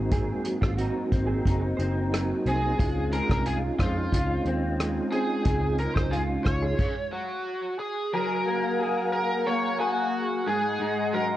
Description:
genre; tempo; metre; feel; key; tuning
indie pop, bedroom pop; 90 BPM; 4/4; straight; Db major; A4 = 441 Hz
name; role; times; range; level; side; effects
electric guitar through a small old amp; accompaniment; 0.0-11.4 s; Ab2 to Ab4; -30 LUFS; left 2 dB; ensemble chorus, vibrato effect
mellow tonewheel organ; accompaniment; 0.0-6.8 s; Ab3 to Gb4; -30 LUFS; right 2 dB; chorus vibrato, slow rotary speaker, cassette tape
vintage muted picked electric bass; bass; 0.0-6.7 s; Gb1 to F2; -29 LUFS; equal; tube saturation
mellow electric guitar; second line; 0.1-6.9 s; Gb3 to C5; -36 LUFS; right 4 dB; ensemble chorus, tape echo
unplugged drum kit; drums; 0.1-6.9 s; crash cymbal, hi-hat, kick drum, rim click; -28 LUFS; equal; none
overdriven slide guitar; melody; 2.5-11.4 s; F4 to Db5; -29 LUFS; equal; lush chorus
phased analog pad; sustained chords; 8.4-11.4 s; Ab4 to C6; -32 LUFS; equal; phaser, chorus
room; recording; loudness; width
light reverb, small room ambience; worn, warbling old tape, cassette tape, warbly pitch drift, nothing above 10.3 kHz; -24 LUFS; side -13 dB against mid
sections
0.0-8.1 A section; 8.1-11.4 B section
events
stop 6.8-8.1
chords
0.0 Ab7; 2.8 Dbmaj7; 8.1 Gbmaj9; 10.5 Ab7

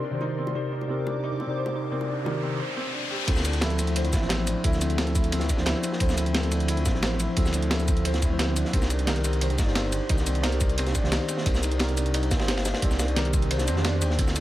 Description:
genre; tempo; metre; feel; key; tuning
liquid drum and bass; 176 BPM; 4/4; straight; unclear; A4 = 441 Hz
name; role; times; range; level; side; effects
mellow tine electric piano; accompaniment; 0.0-14.4 s; C3 to D5; -30 LUFS; equal; slow stereo tremolo, tape echo
airy breathy pad; sustained chords; 0.0-2.6 s; Bb4 to D6; -37 LUFS; left 3 dB; chorus, sidechain pumping
felt-muted upright piano; arpeggios; 0.0-14.4 s; C4 to C5; -33 LUFS; equal; low-pass filter, dub echo
bongos; percussion; 0.2-2.3 s; none; -39 LUFS; equal; none
riser and swell; sound effects; 1.6-3.3, 13.6-14.2 s; none; -36 LUFS; left 1 dB; none
dark detuned saw bass; bass; 3.3-14.4 s; G1 to F2; -27 LUFS; equal; none
breakbeat sampler-style drum kit; drums; 3.3-14.4 s; crash cymbal, hi-hat, shaker, snare drum; -30 LUFS; equal; none
crunchy breakbeat drum kit; drums; 3.3-14.4 s; ride cymbal, snare drum; -33 LUFS; equal; high-pass filter on cymbals, high-pass filter on snare, high-pass filter on room
electronic kick drum; drums; 3.3-14.3 s; none; -26 LUFS; equal; none
room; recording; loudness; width
small room ambience; none; -23 LUFS; side -14 dB against mid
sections
0.0-3.3 A section; 3.3-14.4 B section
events
riser 1.6-3.3; drop 3.3-14.4; kick drops out 13.5-14.2; swell 13.6-14.2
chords
0.0 Cm9; 3.3 Dm9; 8.7 Cm9

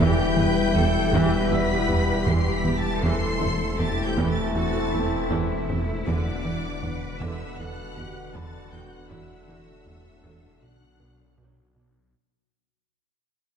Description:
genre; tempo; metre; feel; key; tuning
cinematic, hybrid orchestral and electronic film score; 79 BPM; 4/4; straight; unclear; A4 = 440 Hz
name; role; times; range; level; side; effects
clear symphonic violin section; melody; 0.0-11.4 s; D6 to C7; -34 LUFS; left 2 dB; none
clear symphonic violin section; second line; 0.0-11.4 s; D5 to C6; -35 LUFS; left 3 dB; none
warm symphonic viola section; accompaniment; 0.0-11.9 s; D3 to F#5; -32 LUFS; equal; none
chorused pulse-width pad; sustained chords; 0.0-12.1 s; D3 to F#5; -32 LUFS; left 2 dB; none
mellow French horn section; sustained chords; 0.0-11.8 s; B3 to F#4; -31 LUFS; left 4 dB; none
warm trombone section; sustained chords; 0.0-11.8 s; F#2 to A3; -35 LUFS; right 4 dB; none
plucky analog bass; riff; 0.0-12.0 s; E2 to E3; -28 LUFS; right 1 dB; none
rich symphonic cello section; bass; 0.0-11.8 s; D4 to B4; -34 LUFS; right 2 dB; none
snarling distorted saw bass; bass; 0.0-12.1 s; E1 to B1; -32 LUFS; left 1 dB; distortion
warm symphonic double bass section; bass; 0.0-11.9 s; B1 to E2; -30 LUFS; right 4 dB; none
felt-muted upright piano; texture; 0.0-10.7 s; B4 to E6; -42 LUFS; right 1 dB; none
room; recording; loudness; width
moderate scoring stage reverb, RT60 2.0 s; dark, warm production; -21 LUFS; side -7 dB against mid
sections
0.0-12.1 A section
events
fade-out 0.0-12.1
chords
0.0 Em; 3.0 Am/E; 6.1 Bm/E; 9.1 Dadd9/E; 10.6 Bm

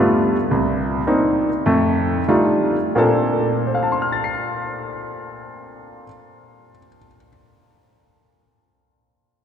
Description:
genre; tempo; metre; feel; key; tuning
jazz; 86-114 BPM; 4/4; swing 67% on 8ths; Bb major; A4 = 443 Hz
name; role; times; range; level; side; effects
clear concert grand piano; accompaniment; 0.0-7.3 s; C2 to C7; -17 LUFS; equal; none
room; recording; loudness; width
wet cathedral reverb, RT60 4.9 s; recorded in a church or concert hall; -17 LUFS; side -8 dB against mid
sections
0.0-3.0 A section; 3.0-8.6 B section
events
slowing down 0.0-3.0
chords
0.0 G9; 0.5 Cm9; 1.7 F13; 3.0 Bbmaj9

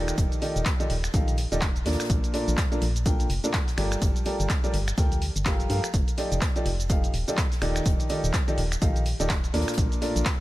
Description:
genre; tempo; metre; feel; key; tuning
piano house; 125 BPM; 4/4; swing 59% on 16ths; unclear; A4 = 440 Hz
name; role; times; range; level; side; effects
clear baby grand piano; riff; 0.0-10.2 s; Bb2 to G5; -29 LUFS; equal; sidechain pumping, low-pass filter, dub echo
organ-like FM bass; bass; 0.0-10.2 s; Eb1 to G2; -28 LUFS; equal; sidechain pumping
punchy analog drum machine; drums; 0.1-10.4 s; finger snaps, handclaps, hi-hat, shaker; -32 LUFS; equal; none
electronic kick drum; drums; 0.2-10.4 s; none; -26 LUFS; equal; none
soft brush drum kit; drums; 0.2-10.4 s; hi-hat, snare drum; -41 LUFS; left 3 dB; sidechain pumping on hats, high-pass filter on hats, high-pass filter on snare, high-pass filter on room
room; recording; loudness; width
small room ambience; none; -23 LUFS; side -17 dB against mid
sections
0.0-10.4 A section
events
none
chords
0.0 Ebmaj9#11; 2.1 Bbmaj7; 3.8 Gm9; 5.9 F13; 7.6 Ebmaj9#11; 9.8 Bbmaj7

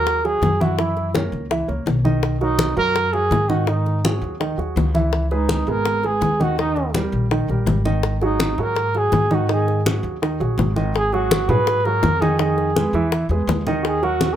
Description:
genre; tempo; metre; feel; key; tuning
Afro-Cuban jazz; 166 BPM; 4/4; straight; G# minor; A4 = 440 Hz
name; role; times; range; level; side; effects
breathy trumpet; melody; 0.0-14.4 s; D#4 to B4; -21 LUFS; right 2 dB; none
warm grand piano; accompaniment; 0.0-14.3 s; D#3 to E5; -24 LUFS; right 3 dB; none
upright bass; bass; 0.0-14.3 s; G#1 to G#2; -23 LUFS; left 1 dB; none
bongos; percussion; 0.1-14.4 s; none; -24 LUFS; left 7 dB; none
congas; percussion; 0.1-14.4 s; none; -25 LUFS; left 2 dB; none
room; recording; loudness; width
light reverb; none; -17 LUFS; side -10 dB against mid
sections
0.0-10.9 A section; 10.9-14.4 B section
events
none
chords
0.0 G#5; 0.8 F#7; 2.2 Bmaj7; 3.7 G#5; 5.1 C#m9; 6.6 D#; 8.0 G#5; 10.9 G#m9; 12.4 Fm7b5; 13.1 E; 13.8 D#m

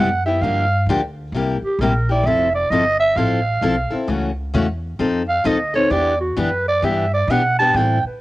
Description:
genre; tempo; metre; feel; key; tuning
acoustic string swing (jazz manouche); 131 BPM; 4/4; swing 64% on 8ths; unclear; A4 = 440 Hz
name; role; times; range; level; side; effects
growling clarinet; second line; 0.0-8.2 s; F#4 to A5; -18 LUFS; right 2 dB; cassette tape, plate reverb
picked steel-string acoustic guitar; accompaniment; 0.0-8.0 s; C3 to A4; -20 LUFS; left 3 dB; cassette tape
upright bass; bass; 0.0-8.1 s; F1 to B2; -23 LUFS; equal; none
room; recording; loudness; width
moderate booth ambience, RT60 0.2 s; home recording on cassette; -16 LUFS; side -17 dB against mid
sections
0.0-8.2 A section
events
clarinet solo 0.0-8.2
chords
0.4 Gm7; 1.3 C7; 2.3 Fmaj7; 4.1 F#m7; 5.0 F6; 5.9 Em7

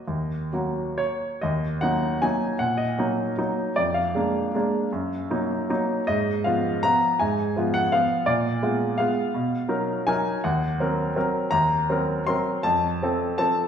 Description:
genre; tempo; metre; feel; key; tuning
classical, piano waltz; 127-182 BPM; 3/4; rubato; Eb minor; A4 = 440 Hz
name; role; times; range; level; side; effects
clear baby grand piano; solo; 0.0-13.7 s; Eb2 to C6; -22 LUFS; equal; none
room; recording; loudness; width
wet recital hall reverb, RT60 1.6 s; heard from further back in the room; -22 LUFS; side -8 dB against mid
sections
0.0-1.4 A section; 1.4-13.7 B section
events
none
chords
0.0 Ebm; 3.8 Bb7/F; 4.9 Ebm/Gb; 6.1 Fm7b5/Ab; 8.3 Bb7b9; 9.3 Bmaj7; 10.4 Cm7b5/Eb; 12.6 F

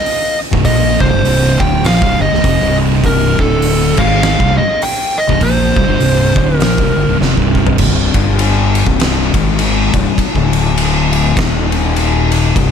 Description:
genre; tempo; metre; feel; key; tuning
stoner and doom metal; 101 BPM; 4/4; swing 59% on 8ths; C minor; A4 = 440 Hz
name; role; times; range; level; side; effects
fuzz lead guitar; melody; 0.0-7.2 s; A4 to G5; -16 LUFS; equal; distortion, analog delay
oversized low-tuned drum kit; drums; 0.1-12.7 s; crash cymbal, hi-hat, kick drum, ride cymbal, snare drum, toms; -16 LUFS; equal; none
thick fuzz guitar; riff; 0.5-12.7 s; C2 to Bb3; -16 LUFS; left 9 dB; distortion
thick fuzz guitar; riff; 0.5-7.8 s; C2 to Bb3; -16 LUFS; right 12 dB; distortion
fuzz fingered electric bass; bass; 0.5-12.7 s; C1 to Bb1; -17 LUFS; right 1 dB; overdrive
room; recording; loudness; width
light reverb; none; -10 LUFS; side -7 dB against mid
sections
0.0-7.8 A section; 7.8-12.7 B section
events
drum fill 7.2-7.8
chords
0.0 Cm; 3.3 D5; 3.9 Cm; 7.8 C5; 8.1 G5; 8.8 C5; 9.3 Ab5; 9.9 C5; 10.3 D5; 11.4 Eb5

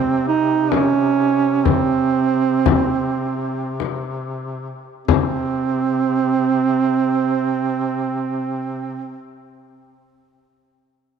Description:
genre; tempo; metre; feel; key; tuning
caucasian folk, Caucasian lament; 46-69 BPM; 3/4; rubato; C phrygian; A4 = 441 Hz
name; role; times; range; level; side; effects
mellow duduk; melody; 0.0-9.2 s; C4 to Eb4; -18 LUFS; right 6 dB; slapback echo
warm duduk; drone; 0.0-9.2 s; C3; -28 LUFS; left 3 dB; none
frame drum; percussion; 0.7-5.7 s; none; -19 LUFS; left 9 dB; none
room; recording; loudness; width
light reverb; 1960s-style stereo with parts hard left and right; -17 LUFS; side -7 dB against mid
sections
0.0-5.1 A section; 5.1-8.8 B section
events
slowing down 0.0-5.1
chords
none

